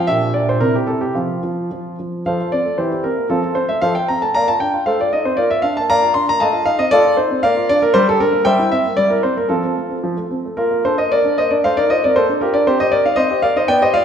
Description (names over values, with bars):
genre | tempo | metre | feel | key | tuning
classical-period piano sonatina | 116 BPM | 2/4 | rubato | F major, Bb major from 6.4 s | A4 = 438 Hz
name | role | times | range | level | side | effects
warm baby grand piano | solo | 0.0-14.0 s | Bb2 to C6 | -14 LUFS | equal | none
room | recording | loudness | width
wet recital hall reverb, RT60 1.5 s | heard from further back in the room | -14 LUFS | side -8 dB against mid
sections
0.0-2.3 A section; 2.3-10.6 B section; 10.6-14.0 C section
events
none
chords
0.1 Gm/Bb; 0.6 C; 1.2 F5; 2.3 F; 2.8 C7/E; 3.3 F; 4.3 Bb; 4.9 F7/A; 5.4 Bb; 6.4 F7/A; 7.4 Bb; 7.9 Gm; 8.4 C7/G; 9.5 F; 10.6 Bb; 11.6 F7/A; 12.1 Bb; 12.7 Cm7